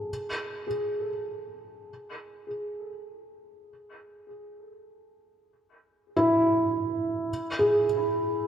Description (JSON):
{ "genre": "ambient", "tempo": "free time", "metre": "none", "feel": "none", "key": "unclear", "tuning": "A4 = 441 Hz", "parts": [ { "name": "felt-muted upright piano", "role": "solo", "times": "0.0-8.5 s", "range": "E4 to G#4", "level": "-26 LUFS", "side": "right 1 dB", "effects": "analog delay" } ], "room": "wet plate reverb, RT60 3.2 s", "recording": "dreamy mix soaked in reverb", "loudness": "-25 LUFS", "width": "side -9 dB against mid", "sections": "0.0-7.3 A section; 7.3-8.5 B section", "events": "none", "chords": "none", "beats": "free time" }